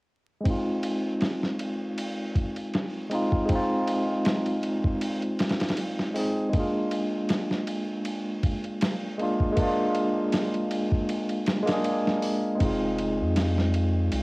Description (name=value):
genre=trip hop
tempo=79 BPM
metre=4/4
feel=swing 55% on 16ths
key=F dorian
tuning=A4 = 443 Hz
part: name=barky tine electric piano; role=accompaniment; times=0.4-14.2 s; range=Ab3 to Ab4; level=-26 LUFS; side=equal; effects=overdrive, harmonic tremolo, low-pass filter, cassette tape, tape echo
part: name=dusty soul sampler-style drum kit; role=drums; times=0.5-14.2 s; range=hi-hat, kick drum, ride cymbal, snare drum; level=-29 LUFS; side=equal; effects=studio reverb, cassette tape
part: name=round analog bass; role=bass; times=12.6-14.2 s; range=F1 to F2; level=-26 LUFS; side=equal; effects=none
room=light reverb, digital ambience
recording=home recording on cassette, vinyl crackle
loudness=-24 LUFS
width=side -25 dB against mid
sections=0.5-14.2 A section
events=none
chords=0.5 Fm7; 6.5 Bb7; 12.6 Fm7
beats=| 0.46 1.22 1.98 2.74 | 3.50 4.26 5.01 5.78 | 6.53 7.29 8.05 8.81 | 9.57 10.33 11.09 11.85 | 12.61 13.37 14.13